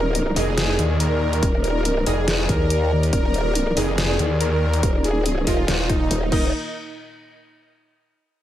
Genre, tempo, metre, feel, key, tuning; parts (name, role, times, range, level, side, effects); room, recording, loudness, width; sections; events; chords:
heavy wobble dubstep; 141 BPM; 4/4; swing 55% on 16ths, half-time; A4 = 441 Hz
soft supersaw; melody; 0.0-6.5 s; Eb4 to Bb4; -25 LUFS; right 1 dB; digital delay
dark studio string section; sustained chords; 0.0-6.5 s; Bb2 to D5; -29 LUFS; left 3 dB; sidechain pumping
growl bass; bass; 0.0-6.5 s; Eb1 to Eb2; -22 LUFS; equal; chorus, overdrive
dubstep drum kit; drums; 0.1-6.4 s; crash cymbal, hi-hat, snare drum; -26 LUFS; left 1 dB
orchestra-hit-like synth stab; stabs; 0.4-6.5 s; Eb4 to Eb5; -30 LUFS; right 4 dB; built-in reverb, digital delay
snarling distorted saw bass; bass; 0.4-6.1 s; Eb1 to Eb2; -22 LUFS; equal; distortion, overdrive
electronic kick drum; drums; 1.4-6.4 s; -22 LUFS; equal; overdrive
digital ambience; -18 LUFS; side -12 dB against mid
0.0-6.5 A section; 6.5-8.2 B section
drop 0.0-6.5
0.0 Eb5; 6.5 N.C.